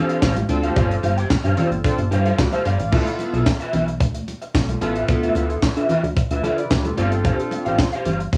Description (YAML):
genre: early-eighties boogie funk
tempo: 111 BPM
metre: 4/4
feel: straight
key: D dorian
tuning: A4 = 436 Hz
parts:
  - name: chorused polysynth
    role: accompaniment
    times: 0.0-7.8 s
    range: B3 to F5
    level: -27 LUFS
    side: equal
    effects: none
  - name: electric guitar through a small old amp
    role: riff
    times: 0.0-8.4 s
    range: F4 to G5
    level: -27 LUFS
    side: equal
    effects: ensemble chorus
  - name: tight funk drum kit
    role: drums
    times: 0.1-8.4 s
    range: crash cymbal, handclaps, hi-hat, kick drum, snare drum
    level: -24 LUFS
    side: equal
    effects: none
  - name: chorused synth bass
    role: bass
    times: 0.2-8.4 s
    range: G1 to D3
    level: -24 LUFS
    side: equal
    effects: none
  - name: congas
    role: percussion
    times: 0.2-8.2 s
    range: none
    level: -30 LUFS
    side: equal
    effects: none
room: light reverb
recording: home recording on cassette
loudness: -20 LUFS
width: mono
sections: 0.0-2.9 A section; 2.9-8.4 B section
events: none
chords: 0.0 G7sus4; 2.9 Dm69; 7.0 G7sus4